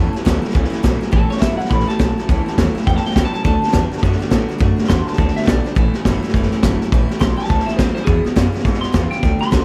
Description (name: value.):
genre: rockabilly.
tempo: 207 BPM.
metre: 4/4.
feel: swing 61% on 8ths.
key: A major.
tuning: A4 = 440 Hz.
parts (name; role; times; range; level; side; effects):
electric guitar through a small old amp; melody; 0.0-9.6 s; G#4 to C6; -26 LUFS; equal; phaser, tape echo.
picked steel-string acoustic guitar; accompaniment; 0.0-9.6 s; E2 to F#4; -28 LUFS; equal; none.
electric guitar through a small old amp; riff; 0.0-9.6 s; E2 to B3; -26 LUFS; equal; spring reverb.
upright bass; bass; 0.0-9.6 s; F#1 to A2; -23 LUFS; equal; none.
vintage drum kit; drums; 0.2-9.6 s; hi-hat, kick drum, snare drum; -20 LUFS; equal; none.
room: light reverb.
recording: none.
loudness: -17 LUFS.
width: mono.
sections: 0.0-9.6 A section.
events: none.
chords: 0.0 A; 3.5 D; 5.8 A; 8.1 E.